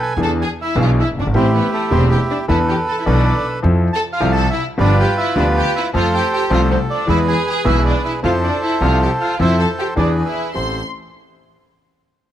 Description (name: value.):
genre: tango.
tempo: 104 BPM.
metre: 4/4.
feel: rubato.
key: A minor.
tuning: A4 = 440 Hz.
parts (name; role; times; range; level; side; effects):
bandoneon; melody; 0.0-10.8 s; E4 to A5; -20 LUFS; right 2 dB; none.
clear studio violin section; second line; 0.2-10.8 s; A3 to C6; -23 LUFS; left 1 dB; none.
warm concert grand piano; accompaniment; 0.2-10.8 s; E1 to A4; -19 LUFS; left 2 dB; none.
upright bass; bass; 0.2-10.8 s; E1 to F2; -18 LUFS; right 1 dB; none.
room: light reverb.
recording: close, detailed microphones.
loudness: -14 LUFS.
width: side -11 dB against mid.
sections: 0.0-10.5 A section; 10.5-12.3 B section.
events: none.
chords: 0.2 E7; 1.3 Am7; 2.5 E7sus4; 3.6 Fmaj7; 4.8 G7; 5.9 F; 7.1 E; 8.2 Fmaj7; 10.0 E7; 10.5 Am7.